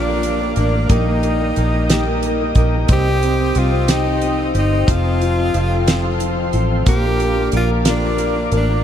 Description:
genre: six-eight pop ballad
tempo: 60 BPM (dotted quarters)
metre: 6/8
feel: straight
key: Bb major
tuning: A4 = 439 Hz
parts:
  - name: clear tenor saxophone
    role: melody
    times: 0.0-8.8 s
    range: D4 to G4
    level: -22 LUFS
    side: equal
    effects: none
  - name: clear concert grand piano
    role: accompaniment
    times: 0.0-8.8 s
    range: F3 to G4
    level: -23 LUFS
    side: equal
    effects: wide subtle chorus
  - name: tonewheel organ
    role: sustained chords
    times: 0.0-8.8 s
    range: A4 to Eb6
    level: -26 LUFS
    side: left 1 dB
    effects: chorus vibrato, wide subtle chorus
  - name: picked steel-string acoustic guitar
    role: arpeggios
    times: 0.0-8.8 s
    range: Bb2 to Bb4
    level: -26 LUFS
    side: left 4 dB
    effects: none
  - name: vintage muted fingered electric bass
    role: bass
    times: 0.0-8.8 s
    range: F1 to C2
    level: -19 LUFS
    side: equal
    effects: none
  - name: damped 70s drum kit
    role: drums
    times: 0.2-8.7 s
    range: hi-hat, kick drum, snare drum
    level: -20 LUFS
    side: equal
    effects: none
room: moderate huge ambient reverb, RT60 8.2 s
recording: dreamy mix soaked in reverb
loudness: -14 LUFS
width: side -9 dB against mid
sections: 0.0-8.8 A section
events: none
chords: 0.0 Bb; 0.9 Eb/Bb; 2.9 Cm; 4.9 F; 6.9 Bb

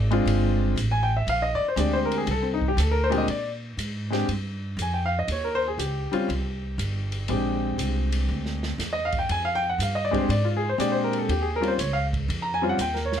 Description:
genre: jazz piano trio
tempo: 120 BPM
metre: 4/4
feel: swing 68% on 8ths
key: Bb mixolydian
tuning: A4 = 440 Hz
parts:
  - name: clear concert grand piano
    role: melody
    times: 0.0-13.2 s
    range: Bb2 to Bb5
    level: -25 LUFS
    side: left 1 dB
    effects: none
  - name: upright bass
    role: bass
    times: 0.0-13.2 s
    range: G1 to Bb2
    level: -27 LUFS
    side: right 1 dB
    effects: none
  - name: open jazz drum kit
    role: drums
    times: 0.1-13.2 s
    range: hi-hat, kick drum, ride cymbal, snare drum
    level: -34 LUFS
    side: equal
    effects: none
room: light reverb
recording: none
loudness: -23 LUFS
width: side -9 dB against mid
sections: 0.0-3.3 A section; 3.3-13.2 A section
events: grand piano solo 0.0-13.2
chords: 0.0 Bb13; 2.3 C7sus2; 3.3 Bb7(no3); 5.3 Eb13; 7.3 Bb13; 11.3 Eb13

